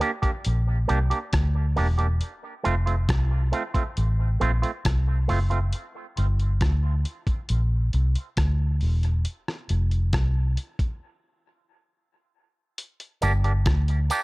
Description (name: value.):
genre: dub reggae.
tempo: 68 BPM.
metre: 4/4.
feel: straight.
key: G dorian.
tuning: A4 = 435 Hz.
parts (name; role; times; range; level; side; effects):
electric guitar with an envelope filter; accompaniment; 0.0-5.6, 13.2-14.2 s; A3 to G4; -29 LUFS; right 4 dB; high-pass filter, dub echo.
dusty soul sampler-style drum kit; drums; 0.0-14.2 s; hi-hat, kick drum, rim click; -27 LUFS; equal; none.
vintage muted fingered electric bass; bass; 0.5-14.1 s; E1 to D2; -22 LUFS; equal; none.
tambourine; percussion; 13.2-14.2 s; none; -36 LUFS; right 3 dB; high-pass filter on perc.
room: little or no reverb.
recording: none.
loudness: -22 LUFS.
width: side -22 dB against mid.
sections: 0.0-12.8 A section; 12.8-14.2 B section.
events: break 0.0-12.8; filter sweep 9.3-14.2.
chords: 0.0 Gm; 2.2 F; 5.7 Gm; 9.3 F5; 12.8 Gm.